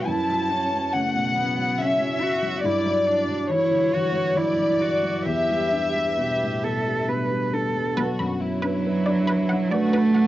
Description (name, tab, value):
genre	neoclassical piano and strings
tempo	69 BPM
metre	3/4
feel	rubato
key	E dorian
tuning	A4 = 439 Hz
part	warm chamber violin section	melody	0.0-10.3 s	E4 to A5	-24 LUFS	left 2 dB	cassette tape
part	warm cello	second line	0.0-10.3 s	F#3 to B4	-25 LUFS	right 3 dB	cassette tape
part	felt-muted upright piano	accompaniment	0.0-10.3 s	B1 to B4	-27 LUFS	left 2 dB	cassette tape
part	deep dark ambient pad	sustained chords	0.0-10.3 s	F#3 to C#5	-34 LUFS	right 2 dB	chorus, built-in reverb, cassette tape
part	resonant blip pluck	arpeggios	8.0-10.3 s	B4 to B5	-30 LUFS	right 1 dB	chorus, cassette tape
room	light reverb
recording	home recording on cassette, nothing above 7.6 kHz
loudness	-20 LUFS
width	side -14 dB against mid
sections	0.0-8.0 A section; 8.0-10.3 B section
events	none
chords	0.1 F#m7; 2.6 Emadd9; 5.3 Em7; 8.0 Bm